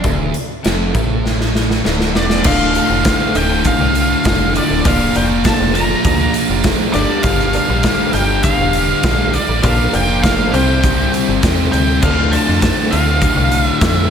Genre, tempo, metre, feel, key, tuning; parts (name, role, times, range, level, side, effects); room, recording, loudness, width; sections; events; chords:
classic rock; 100 BPM; 4/4; straight; D minor; A4 = 444 Hz
distorted electric guitar; riff; 0.0-14.1 s; D2 to C5; -22 LUFS; right 10 dB; distortion
overdriven electric guitar; riff; 0.0-14.1 s; D2 to C4; -22 LUFS; left 9 dB
metallic FM bass; bass; 0.0-14.1 s; D1 to F2; -19 LUFS; equal
big rock drum kit; drums; 0.0-14.0 s; crash cymbal, hi-hat, kick drum, snare drum; -17 LUFS; equal
octave-fuzz lead guitar; melody; 2.2-14.1 s; D5 to Bb5; -19 LUFS; equal; wah, distortion, slapback echo
biting overdriven guitar; riff; 2.4-14.1 s; D2 to C4; -21 LUFS; right 1 dB; slapback echo
tube shaker; percussion; 2.4-14.0 s; -35 LUFS; left 11 dB
clear grand piano; accompaniment; 2.5-13.3 s; C4 to F5; -26 LUFS; left 3 dB
moderate lush hall reverb, RT60 2.7 s; big arena sound; -12 LUFS; side -8 dB against mid
0.0-2.5 A section; 2.5-14.1 B section
drum fill 1.2-2.5
0.0 Dm; 4.9 Bb/D; 6.9 Gm; 9.6 Bb; 10.5 C; 12.0 Dm